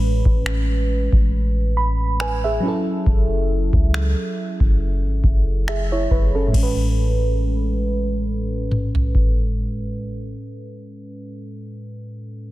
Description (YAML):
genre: contemporary R&B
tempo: 69 BPM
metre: 4/4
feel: swing 54% on 16ths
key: A major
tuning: A4 = 440 Hz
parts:
  - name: mellow FM electric piano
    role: accompaniment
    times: 0.0-12.5 s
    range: A2 to B5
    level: -24 LUFS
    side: right 1 dB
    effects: chorus, low-pass filter
  - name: soft 808-style bass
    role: bass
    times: 0.0-10.3 s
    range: F#1 to C#2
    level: -21 LUFS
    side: equal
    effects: none
  - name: booming analog drum machine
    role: drums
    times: 0.3-9.4 s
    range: crash cymbal, finger snaps, kick drum, toms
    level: -20 LUFS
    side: equal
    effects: soft clipping on snare
room: digital ambience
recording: dense, heavily limited modern master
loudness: -18 LUFS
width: side -17 dB against mid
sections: 0.0-6.5 A section; 6.5-10.0 B section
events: filter sweep on FM electric piano 0.0-6.5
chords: 0.0 Amaj9; 2.6 F#m7; 6.5 Amaj9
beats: 0.46 1.32 2.19 | 3.06 3.93 4.80 5.67 | 6.54 7.41 8.28 9.15